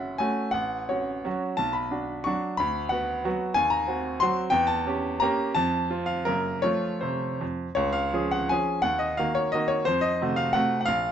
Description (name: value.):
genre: classical, romantic triple-time dance for piano with dotted rhythms.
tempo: 149-199 BPM.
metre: 3/4.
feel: rubato.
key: unclear.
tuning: A4 = 440 Hz.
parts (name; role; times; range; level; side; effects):
bright baby grand piano; solo; 0.0-11.1 s; F#1 to C#6; -24 LUFS; equal; none.
room: light reverb.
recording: dark, warm production, nothing above 7.8 kHz.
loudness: -24 LUFS.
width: side -9 dB against mid.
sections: 0.0-7.8 A section; 7.8-11.1 B section.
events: none.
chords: 0.0 F#m; 0.5 F#m/A; 1.6 Bm; 2.6 Bm/D; 3.6 Cm7b5/Eb; 4.5 Edim7; 5.5 F; 6.3 Gb; 6.6 F; 7.8 Db; 8.8 Ebm; 9.9 F7b9.